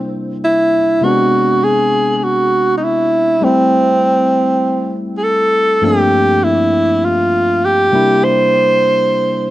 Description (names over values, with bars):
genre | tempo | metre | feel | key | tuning
soul | 100 BPM | 4/4 | swing 54% on 16ths | unclear | A4 = 440 Hz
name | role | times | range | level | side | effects
breathy tenor saxophone | melody | 0.0-9.5 s | C4 to C5 | -12 LUFS | right 1 dB | none
barky tine electric piano | accompaniment | 0.0-9.5 s | G2 to E4 | -18 LUFS | left 2 dB | overdrive
room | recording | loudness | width
light reverb, small room ambience | none | -11 LUFS | side -15 dB against mid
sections
0.0-9.5 A section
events
none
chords
0.0 C7; 1.0 E7b13; 3.4 Am7; 5.8 Gm11; 7.9 C7